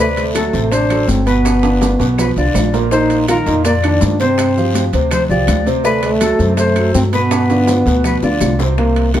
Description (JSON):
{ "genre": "latin, salsa", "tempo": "164 BPM", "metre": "4/4", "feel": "straight", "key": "unclear", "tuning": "A4 = 440 Hz", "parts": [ { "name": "dark trombone", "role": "melody", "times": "0.0-9.2 s", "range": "A3 to F4", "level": "-16 LUFS", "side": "equal", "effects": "none" }, { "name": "breathy bright jazz flute", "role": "second line", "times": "0.0-8.6 s", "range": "A4 to D5", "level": "-20 LUFS", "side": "left 2 dB", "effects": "none" }, { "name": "clear concert grand piano", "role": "accompaniment", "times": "0.0-9.2 s", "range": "Bb2 to D5", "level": "-19 LUFS", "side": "right 2 dB", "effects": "none" }, { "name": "upright bass", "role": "bass", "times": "0.0-9.2 s", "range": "G1 to G2", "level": "-18 LUFS", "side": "equal", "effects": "none" }, { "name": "bongos", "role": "percussion", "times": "0.2-9.2 s", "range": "none", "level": "-27 LUFS", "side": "left 7 dB", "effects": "none" }, { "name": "congas", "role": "percussion", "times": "0.2-9.2 s", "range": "none", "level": "-25 LUFS", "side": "left 3 dB", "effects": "none" }, { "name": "maracas", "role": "percussion", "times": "0.2-8.8 s", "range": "none", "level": "-31 LUFS", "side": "right 6 dB", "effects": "none" }, { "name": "timbales", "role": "percussion", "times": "0.2-9.2 s", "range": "none", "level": "-25 LUFS", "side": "right 8 dB", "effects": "none" }, { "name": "guiro", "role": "percussion", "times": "0.3-9.2 s", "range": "none", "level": "-33 LUFS", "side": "left 5 dB", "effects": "none" }, { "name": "claves", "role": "percussion", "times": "0.4-9.2 s", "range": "none", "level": "-33 LUFS", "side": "right 3 dB", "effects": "none" } ], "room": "light reverb", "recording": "none", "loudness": "-12 LUFS", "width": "side -11 dB against mid", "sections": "0.0-8.8 A section", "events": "drum fill 1.5-2.9, 7.3-8.8", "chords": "0.0 D7; 1.5 G7; 2.9 Bbsus4; 4.4 G7sus4; 5.8 D7; 7.3 G7", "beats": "0.35 0.72 1.09 | 1.45 1.82 2.19 2.55 | 2.92 3.28 3.65 4.02 | 4.38 4.75 5.12 5.48 | 5.85 6.21 6.58 6.95 | 7.31 7.68 8.04 8.41 | 8.78 9.14" }